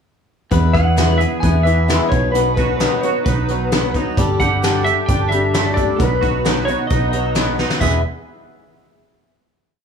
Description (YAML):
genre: folk rock and heartland rock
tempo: 132 BPM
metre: 4/4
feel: straight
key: unclear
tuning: A4 = 439 Hz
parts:
  - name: picked swing-style acoustic guitar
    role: accompaniment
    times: 0.5-8.0 s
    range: B2 to B4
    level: -22 LUFS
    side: left 6 dB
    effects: none
  - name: twangy electric guitar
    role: riff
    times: 0.5-8.0 s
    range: E2 to G#4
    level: -23 LUFS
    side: right 12 dB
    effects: analog chorus
  - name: hollow-body short-scale picked electric bass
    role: bass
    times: 0.5-8.0 s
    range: E1 to E2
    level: -19 LUFS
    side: equal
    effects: none
  - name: soft brush drum kit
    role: drums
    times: 0.5-7.9 s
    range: crash cymbal, hi-hat, kick drum, snare drum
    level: -21 LUFS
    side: equal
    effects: none
  - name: clean lap steel guitar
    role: melody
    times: 0.7-8.0 s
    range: B4 to G#5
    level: -21 LUFS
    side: left 1 dB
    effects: none
room: small room ambience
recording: none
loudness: -14 LUFS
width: side -6 dB against mid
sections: 0.5-7.8 verse; 7.8-9.6 final chord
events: drum fill 7.6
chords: 0.5 E; 2.1 B; 4.2 Gsus2; 6.0 B; 7.8 E